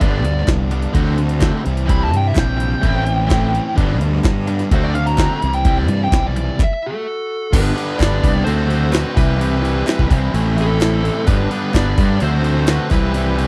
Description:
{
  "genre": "indie rock",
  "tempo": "128 BPM",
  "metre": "4/4",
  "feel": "straight",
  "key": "G major",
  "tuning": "A4 = 440 Hz",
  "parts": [
    { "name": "fuzz lead guitar", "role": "melody", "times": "0.0-13.5 s", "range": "A4 to B5", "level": "-26 LUFS", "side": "equal", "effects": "distortion, slapback echo" },
    { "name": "crunchy overdriven guitar", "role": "riff", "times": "0.0-13.5 s", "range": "G2 to G4", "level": "-26 LUFS", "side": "equal", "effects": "analog chorus" },
    { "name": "overdriven semi-hollow guitar", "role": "riff", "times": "0.0-13.5 s", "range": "G2 to F#4", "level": "-26 LUFS", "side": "equal", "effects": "none" },
    { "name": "fuzz fingered electric bass", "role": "bass", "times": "0.0-13.5 s", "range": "G1 to G2", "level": "-21 LUFS", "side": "equal", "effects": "overdrive" },
    { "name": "jungle sampler-style drum kit", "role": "drums", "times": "0.0-13.5 s", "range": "crash cymbal, handclaps, hi-hat, kick drum, snare drum", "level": "-19 LUFS", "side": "equal", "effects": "none" },
    { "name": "group handclap", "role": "percussion", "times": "0.5-12.8 s", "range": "none", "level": "-36 LUFS", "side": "equal", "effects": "none" },
    { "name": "clear trumpet", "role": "second line", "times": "6.8-13.5 s", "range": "E4 to B4", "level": "-34 LUFS", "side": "equal", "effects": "none" }
  ],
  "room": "little or no reverb",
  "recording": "dry, close 1970s-style studio recording",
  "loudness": "-17 LUFS",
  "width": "mono",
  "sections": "0.0-7.5 A section; 7.5-13.5 B section",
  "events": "lead electric guitar solo 0.0-7.5; stop 6.6-7.5",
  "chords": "0.0 G; 1.0 D7; 1.7 C; 2.8 Am7; 3.8 G; 4.7 D7; 5.4 Cmaj7; 6.6 N.C.; 7.5 G; 8.5 D7; 9.2 Cmaj7; 10.3 Am; 11.3 G; 12.2 D7; 12.9 Cmaj7"
}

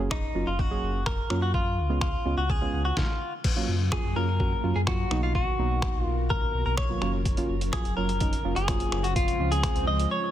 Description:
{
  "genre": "dance-pop",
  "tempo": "126 BPM",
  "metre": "4/4",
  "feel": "straight",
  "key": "F# major",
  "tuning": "A4 = 440 Hz",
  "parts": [
    { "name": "deep mellow chord stab", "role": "accompaniment", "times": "0.0-9.9 s", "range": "E#3 to G#4", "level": "-33 LUFS", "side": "right 3 dB", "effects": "chorus, sidechain pumping" },
    { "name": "sub bass with octave", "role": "bass", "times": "0.0-10.1 s", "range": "F#1 to F#2", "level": "-28 LUFS", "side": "equal", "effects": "sidechain pumping" },
    { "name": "direct-recorded clean electric guitar", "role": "melody", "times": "0.1-10.3 s", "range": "D#4 to D#5", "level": "-30 LUFS", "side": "left 1 dB", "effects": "wide subtle chorus, ping-pong delay" },
    { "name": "trip hop sampler-style drum kit", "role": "drums", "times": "0.1-10.1 s", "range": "crash cymbal, finger snaps, hi-hat, kick drum, snare drum", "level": "-28 LUFS", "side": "equal", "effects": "soft clipping on snare" },
    { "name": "string machine, cellos", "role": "sustained chords", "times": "3.4-10.3 s", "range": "B2 to A#4", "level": "-35 LUFS", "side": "equal", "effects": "ensemble chorus, sidechain pumping" },
    { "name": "swell", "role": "sound effects", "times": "8.8-10.1 s", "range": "none", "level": "-39 LUFS", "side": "right 2 dB", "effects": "none" }
  ],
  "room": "little or no reverb",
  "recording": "dense, heavily limited modern master",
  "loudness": "-24 LUFS",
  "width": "side -12 dB against mid",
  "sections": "0.0-3.4 A section; 3.4-10.3 B section",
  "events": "stop 3.0-3.4; swell 8.8-10.3; break 10.1",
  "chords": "0.0 F#maj7; 1.5 C#7; 3.4 F#maj7; 5.1 Bmaj7; 7.0 F#maj7; 9.2 C#"
}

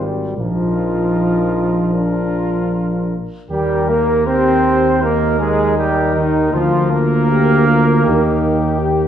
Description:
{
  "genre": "classical, brass quintet",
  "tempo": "78 BPM",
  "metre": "4/4",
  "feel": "straight",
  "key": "Eb major",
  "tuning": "A4 = 440 Hz",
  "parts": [
    { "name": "mellow trumpet", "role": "melody", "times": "0.0-9.1 s", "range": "G4 to Bb4", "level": "-25 LUFS", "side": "left 7 dB", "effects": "none" },
    { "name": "warm flugelhorn", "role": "second line", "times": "0.0-9.1 s", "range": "Eb4 to C5", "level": "-22 LUFS", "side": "right 3 dB", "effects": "none" },
    { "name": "bright trombone", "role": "accompaniment", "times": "0.0-9.1 s", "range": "Eb3 to C4", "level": "-18 LUFS", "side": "right 2 dB", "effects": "none" },
    { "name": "warm French horn", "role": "accompaniment", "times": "0.0-9.1 s", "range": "D4 to Bb4", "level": "-21 LUFS", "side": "left 2 dB", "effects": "none" },
    { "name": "mellow tuba", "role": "bass", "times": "0.0-9.1 s", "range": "Ab1 to Eb2", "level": "-18 LUFS", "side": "right 1 dB", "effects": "none" }
  ],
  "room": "wet recital hall reverb, RT60 1.3 s",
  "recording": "heard from further back in the room",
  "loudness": "-13 LUFS",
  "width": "side -9 dB against mid",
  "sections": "0.0-3.5 A section; 3.5-9.1 B section",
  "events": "none",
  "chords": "0.4 Bbsus4; 1.9 Bb; 3.5 Eb; 6.5 Bb/D; 8.1 Eb"
}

